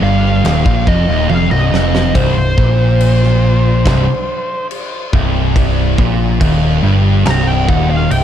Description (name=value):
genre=stoner and doom metal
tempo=70 BPM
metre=4/4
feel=straight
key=C minor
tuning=A4 = 436 Hz
part: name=fuzz lead guitar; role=melody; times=0.0-8.2 s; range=C5 to Bb5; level=-19 LUFS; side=equal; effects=wah, distortion, tape echo
part: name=thick fuzz guitar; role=riff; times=0.0-8.2 s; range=C2 to Bb2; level=-17 LUFS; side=left 7 dB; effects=distortion
part: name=thick fuzz guitar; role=riff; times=0.0-8.2 s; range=C2 to Bb2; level=-17 LUFS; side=right 6 dB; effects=distortion
part: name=tight distorted guitar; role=riff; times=0.0-8.2 s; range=C2 to Bb2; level=-21 LUFS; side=equal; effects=distortion
part: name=growling picked electric bass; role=bass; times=0.0-8.2 s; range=C1 to Bb1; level=-16 LUFS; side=equal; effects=overdrive
part: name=big rock drum kit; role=drums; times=0.4-8.2 s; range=crash cymbal, kick drum, snare drum, toms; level=-18 LUFS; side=equal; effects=none
room=light reverb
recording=dark, warm production, faint mains hum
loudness=-10 LUFS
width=side -10 dB against mid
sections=0.0-8.2 A section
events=lead electric guitar solo 0.0-8.2; drum fill 1.3-2.1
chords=0.0 Cm